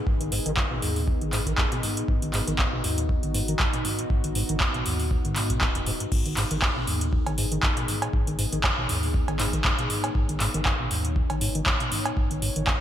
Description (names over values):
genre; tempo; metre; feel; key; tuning
acid house; 119 BPM; 4/4; swing 55% on 16ths; G# minor pentatonic; A4 = 440 Hz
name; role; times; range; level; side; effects
warbly tape-like pad; sustained chords; 0.0-12.8 s; B3 to C#5; -33 LUFS; left 1 dB; chorus, built-in reverb, sidechain pumping
deep acid bass; riff; 0.1-12.8 s; F#2 to D#3; -30 LUFS; equal; ensemble chorus, digital delay
warm sub bass; bass; 0.1-12.8 s; D#1 to G#2; -32 LUFS; equal; tube saturation, sidechain pumping
electronic kick drum; drums; 0.1-12.8 s; none; -27 LUFS; equal; overdrive
booming analog drum machine; drums; 0.2-12.8 s; cowbell, crash cymbal, handclaps, hi-hat; -27 LUFS; right 1 dB; overdrive, gated reverb
room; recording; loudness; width
moderate plate reverb, RT60 2.3 s; bright 1980s-style digital production; -23 LUFS; side -11 dB against mid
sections
0.0-12.8 A section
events
filter sweep on acid bass 0.0-12.8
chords
0.0 G#m